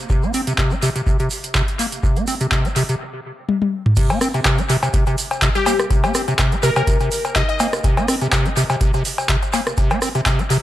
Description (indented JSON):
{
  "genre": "acid house",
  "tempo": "124 BPM",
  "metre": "4/4",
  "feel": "swing 54% on 16ths",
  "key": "C minor",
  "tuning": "A4 = 440 Hz",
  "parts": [
    { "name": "acid bass, square", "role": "riff", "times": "0.1-10.6 s", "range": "C3 to C4", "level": "-21 LUFS", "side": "equal", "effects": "analog chorus, dub echo" },
    { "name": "electronic kick drum", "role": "drums", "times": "0.1-10.4 s", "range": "none", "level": "-20 LUFS", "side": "equal", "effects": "none" },
    { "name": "tube shaker", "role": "percussion", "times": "0.1-10.6 s", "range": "none", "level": "-30 LUFS", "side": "right 5 dB", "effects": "none" },
    { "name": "booming analog drum machine", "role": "drums", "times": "0.3-10.6 s", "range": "cowbell, crash cymbal, handclaps, hi-hat, rim click, toms", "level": "-21 LUFS", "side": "left 1 dB", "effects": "analog delay" },
    { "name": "glassy wavetable pluck", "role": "melody", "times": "5.6-7.6 s", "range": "G4 to Eb5", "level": "-24 LUFS", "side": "left 3 dB", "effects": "chorus, cassette tape, dub echo" }
  ],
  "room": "light reverb, digital ambience",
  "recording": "echo-heavy mix",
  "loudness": "-16 LUFS",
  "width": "side -13 dB against mid",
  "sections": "0.0-4.0 A section; 4.0-10.6 B section",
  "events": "drum fill 3.5-4.0; drop 4.0-10.6",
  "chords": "none"
}